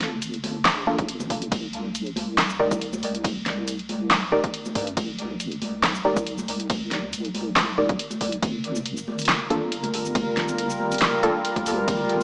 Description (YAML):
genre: deep dubstep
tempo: 139 BPM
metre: 4/4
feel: swing 54% on 16ths, half-time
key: G minor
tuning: A4 = 440 Hz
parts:
  - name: deep soft wobble bass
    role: bass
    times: 0.0-12.2 s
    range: G1 to G2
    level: -31 LUFS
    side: equal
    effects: chorus, tube saturation
  - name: deep house drum kit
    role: drums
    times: 0.0-12.2 s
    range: handclaps, hi-hat, ride cymbal, shaker, snare drum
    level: -25 LUFS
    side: equal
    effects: overdrive
  - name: congas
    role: percussion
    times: 0.1-12.2 s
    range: none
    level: -33 LUFS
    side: equal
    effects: dub echo
  - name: filtered dub chord stab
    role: stabs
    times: 0.9-11.4 s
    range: Bb3 to D5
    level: -26 LUFS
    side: equal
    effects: chorus, cassette tape, dub echo
  - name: electronic kick drum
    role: drums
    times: 1.0-12.0 s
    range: none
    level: -29 LUFS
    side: equal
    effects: overdrive
  - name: deep dark ambient pad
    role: sustained chords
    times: 9.2-12.2 s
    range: G3 to Bb4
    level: -26 LUFS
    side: equal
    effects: chorus, built-in reverb
room: moderate echo chamber reverb, RT60 1.4 s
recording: vinyl crackle, small speaker sound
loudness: -22 LUFS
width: side -40 dB against mid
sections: 0.0-8.4 A section; 8.4-12.2 A section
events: drop 0.0-8.4, 8.4-12.2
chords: 0.0 Gm7; 1.5 Cm7; 8.4 Gm7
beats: 0.22 0.65 1.09 | 1.52 1.95 2.38 2.81 | 3.24 3.68 4.11 4.54 | 4.97 5.40 5.83 6.27 | 6.70 7.13 7.56 7.99 | 8.42 8.86 9.29 9.72 | 10.15 10.58 11.01 11.45 | 11.88